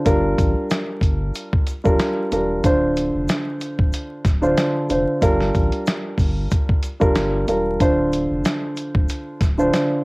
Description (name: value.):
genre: hip hop, boom-bap hip-hop.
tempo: 93 BPM.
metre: 4/4.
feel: swing 56% on 16ths.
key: D minor.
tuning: A4 = 436 Hz.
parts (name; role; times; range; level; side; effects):
dark concert grand piano; accompaniment; 0.0-10.0 s; D3 to C5; -20 LUFS; equal; cassette tape, high-pass filter, low-pass filter.
saturated sub bass; bass; 0.1-9.7 s; D1 to A1; -25 LUFS; equal; none.
dusty soul sampler-style drum kit; drums; 0.1-9.9 s; hi-hat, kick drum, snare drum; -20 LUFS; equal; cassette tape.
egg shaker; percussion; 0.1-9.9 s; none; -44 LUFS; left 2 dB; none.
room: light reverb.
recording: home recording on cassette, vinyl crackle.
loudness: -17 LUFS.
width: side -26 dB against mid.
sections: 0.0-10.0 A section.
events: none.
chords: 0.1 Gm7; 2.6 Dm7; 5.2 Gm7; 7.8 Dm7.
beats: | 0.06 0.70 1.35 1.99 | 2.64 3.29 3.93 4.58 | 5.22 5.87 6.51 7.16 | 7.80 8.45 9.09 9.74.